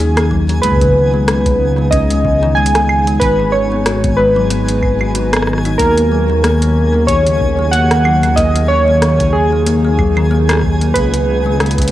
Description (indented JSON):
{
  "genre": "IDM",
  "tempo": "93 BPM",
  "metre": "4/4",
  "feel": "swing 56% on 16ths",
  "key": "Eb minor",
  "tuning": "A4 = 441 Hz",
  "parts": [
    { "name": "warbly lo-fi synth keys", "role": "melody", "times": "0.0-11.9 s", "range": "Ab4 to Ab5", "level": "-15 LUFS", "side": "right 1 dB", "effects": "chorus, cassette tape, tape echo" },
    { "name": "warbly tape-like pad", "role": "sustained chords", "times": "0.0-11.9 s", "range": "Db3 to Cb5", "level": "-25 LUFS", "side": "right 1 dB", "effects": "chorus, built-in reverb, vintage 12-bit sampler grit, sidechain pumping, cassette tape" },
    { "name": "kalimba", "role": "arpeggios", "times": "0.0-11.9 s", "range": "Db3 to Gb4", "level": "-18 LUFS", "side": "left 3 dB", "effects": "cassette tape, analog delay" },
    { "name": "dark detuned saw bass", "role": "bass", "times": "0.0-11.9 s", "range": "Ab1 to Eb2", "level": "-16 LUFS", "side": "equal", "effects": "tube saturation" },
    { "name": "twinkling granular texture", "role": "texture", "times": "0.0-11.9 s", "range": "Ab4 to Ab5", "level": "-26 LUFS", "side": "right 1 dB", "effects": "built-in reverb, cassette tape" },
    { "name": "electro analog drum machine", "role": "drums", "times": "0.2-11.9 s", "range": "claves, hi-hat, rim click", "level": "-19 LUFS", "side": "equal", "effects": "studio reverb, cassette tape" },
    { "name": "electronic kick drum", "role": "drums", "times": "0.3-11.9 s", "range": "none", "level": "-19 LUFS", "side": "equal", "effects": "studio reverb, cassette tape" }
  ],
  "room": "light reverb",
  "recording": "home recording on cassette",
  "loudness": "-11 LUFS",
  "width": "side -14 dB against mid",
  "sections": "0.0-11.9 A section",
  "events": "none",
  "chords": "0.0 Ebm7; 0.6 Db7sus2; 3.2 Abm7; 5.8 Ebm7; 11.0 Db7sus2",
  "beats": "| 0.63 1.28 1.92 2.57 | 3.21 3.86 4.50 5.15 | 5.79 6.44 7.08 7.73 | 8.38 9.02 9.67 10.31 | 10.96 11.60"
}